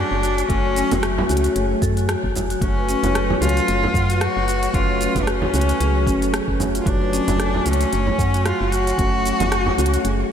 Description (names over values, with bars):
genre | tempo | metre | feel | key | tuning
organic downtempo | 113 BPM | 4/4 | swing 56% on 16ths | F# harmonic minor | A4 = 440 Hz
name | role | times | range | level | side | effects
rich cello | melody | 0.0-10.3 s | A3 to F#4 | -24 LUFS | left 1 dB | ping-pong delay, shimmer reverb
felt-muted upright piano | accompaniment | 0.0-10.3 s | F#3 to C#5 | -27 LUFS | equal | sidechain pumping, ping-pong delay, shimmer reverb
warbly tape-like pad | sustained chords | 0.0-10.3 s | F#3 to G#5 | -28 LUFS | equal | chorus, built-in reverb, sidechain pumping, shimmer reverb
marimba with medium hard mallets | arpeggios | 0.0-10.3 s | C#4 to F#5 | -25 LUFS | left 3 dB | ping-pong delay, shimmer reverb
woody FM bass | bass | 0.0-10.2 s | F#1 to F#2 | -22 LUFS | equal | none
organic electronic drum kit | drums | 0.2-10.2 s | hi-hat, rim click, shaker | -29 LUFS | equal | studio reverb
electronic kick drum | drums | 0.5-9.1 s | none | -24 LUFS | equal | studio reverb
frame drum | percussion | 0.9-9.8 s | none | -28 LUFS | right 3 dB | none
room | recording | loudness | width
moderate lush hall reverb, RT60 2.7 s | dreamy mix soaked in reverb | -17 LUFS | side -8 dB against mid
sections
0.0-10.3 A section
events
none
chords
0.0 F#m